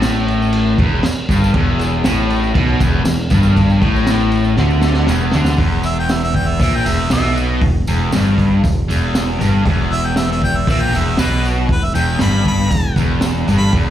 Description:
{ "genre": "garage rock duo or trio", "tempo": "118 BPM", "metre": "4/4", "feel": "straight", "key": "unclear", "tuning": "A4 = 440 Hz", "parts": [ { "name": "overdriven electric guitar", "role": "riff", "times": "0.0-13.9 s", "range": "E2 to D3", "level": "-17 LUFS", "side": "equal", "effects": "slapback echo" }, { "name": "growling picked electric bass", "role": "bass", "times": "0.0-13.9 s", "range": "E1 to D2", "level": "-17 LUFS", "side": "equal", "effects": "overdrive" }, { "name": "crunchy breakbeat drum kit", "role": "drums", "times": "0.0-13.8 s", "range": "crash cymbal, hi-hat, kick drum, snare drum", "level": "-19 LUFS", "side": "equal", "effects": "none" }, { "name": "tambourine", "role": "percussion", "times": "0.0-13.6 s", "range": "none", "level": "-35 LUFS", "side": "right 1 dB", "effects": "none" }, { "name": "bright harmonica", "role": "melody", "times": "5.9-13.7 s", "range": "B4 to B5", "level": "-21 LUFS", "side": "equal", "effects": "overdrive, slapback echo, tape echo" } ], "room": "light reverb", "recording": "live gig heard through the venue's PA, club reverb", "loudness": "-13 LUFS", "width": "side -11 dB against mid", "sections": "0.0-5.6 A section; 5.6-13.9 B section", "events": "drum fill 4.6-5.6", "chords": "0.0 E5" }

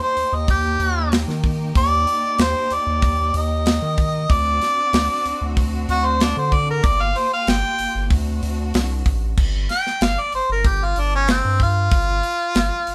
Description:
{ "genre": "straight-eighth soul blues", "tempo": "94 BPM", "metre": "4/4", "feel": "straight", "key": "G minor", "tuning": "A4 = 439 Hz", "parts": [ { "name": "warm harmonica", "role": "melody", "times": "0.0-12.9 s", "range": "C4 to G5", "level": "-22 LUFS", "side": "equal", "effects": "overdrive" }, { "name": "clear studio string section", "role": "sustained chords", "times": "0.0-9.4 s", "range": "Bb3 to G4", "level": "-35 LUFS", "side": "equal", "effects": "none" }, { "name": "round analog bass", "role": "bass", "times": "0.2-12.9 s", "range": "G1 to Eb3", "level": "-25 LUFS", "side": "equal", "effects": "none" }, { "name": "tight funk drum kit", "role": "drums", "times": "0.2-12.9 s", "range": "crash cymbal, hi-hat, kick drum, snare drum", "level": "-23 LUFS", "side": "equal", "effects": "none" } ], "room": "light reverb", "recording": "band playing live in one room", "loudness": "-20 LUFS", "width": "mono", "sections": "0.0-9.4 A section; 9.4-12.9 A section", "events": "harmonica solo 0.0-12.9", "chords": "0.0 Eb; 4.3 D7; 6.8 Gm7; 8.1 D7; 9.4 G7(no3)" }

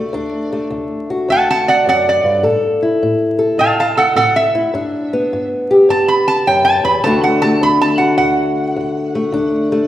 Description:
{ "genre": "acoustic country blues, solo or duo", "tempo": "104 BPM", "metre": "4/4", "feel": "swing 65% on 8ths", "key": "D major", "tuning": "A4 = 441 Hz", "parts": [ { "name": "lap resonator guitar", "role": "melody", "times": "0.0-9.9 s", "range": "A4 to B5", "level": "-14 LUFS", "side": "right 2 dB", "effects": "none" }, { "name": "fingerpicked old ladder-braced acoustic guitar", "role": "accompaniment", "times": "0.0-9.9 s", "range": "D2 to A4", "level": "-15 LUFS", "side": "left 1 dB", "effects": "none" } ], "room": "wet recital hall reverb, RT60 1.7 s", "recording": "recorded in a church or concert hall, vinyl crackle", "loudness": "-12 LUFS", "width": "side -13 dB against mid", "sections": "0.0-9.9 A section", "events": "resonator guitar played with a steel bar solo 0.0-9.9", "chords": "0.0 D; 2.4 A5; 4.7 G; 7.0 D" }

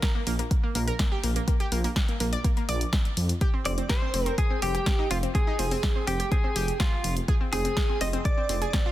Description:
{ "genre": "progressive house", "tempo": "124 BPM", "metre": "4/4", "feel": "straight", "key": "F dorian", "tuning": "A4 = 440 Hz", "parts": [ { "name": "analog pluck", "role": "arpeggios", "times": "0.0-8.9 s", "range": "Bb3 to D5", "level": "-33 LUFS", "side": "equal", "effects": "chorus, sidechain pumping, digital delay" }, { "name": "deep house drum kit", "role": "drums", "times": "0.0-8.8 s", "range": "hi-hat, snare drum", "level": "-32 LUFS", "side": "equal", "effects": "none" }, { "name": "electronic kick drum", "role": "drums", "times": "0.0-8.8 s", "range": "none", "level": "-25 LUFS", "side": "equal", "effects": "none" }, { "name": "dark detuned saw bass", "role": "bass", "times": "0.3-8.6 s", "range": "F1 to F2", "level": "-28 LUFS", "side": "equal", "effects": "sidechain pumping" }, { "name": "direct-recorded clean electric guitar", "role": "melody", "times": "3.7-8.9 s", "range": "F4 to Eb5", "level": "-32 LUFS", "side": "right 1 dB", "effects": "sidechain pumping, tape echo" }, { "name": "airy dreamy lead", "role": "second line", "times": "3.7-8.9 s", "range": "F4 to Eb5", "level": "-33 LUFS", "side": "right 1 dB", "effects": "chorus, sidechain pumping, digital delay" } ], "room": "little or no reverb", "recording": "dense, heavily limited modern master", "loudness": "-24 LUFS", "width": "side -14 dB against mid", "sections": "0.0-8.9 A section", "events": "none", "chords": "0.0 Bb; 3.4 Fmadd9" }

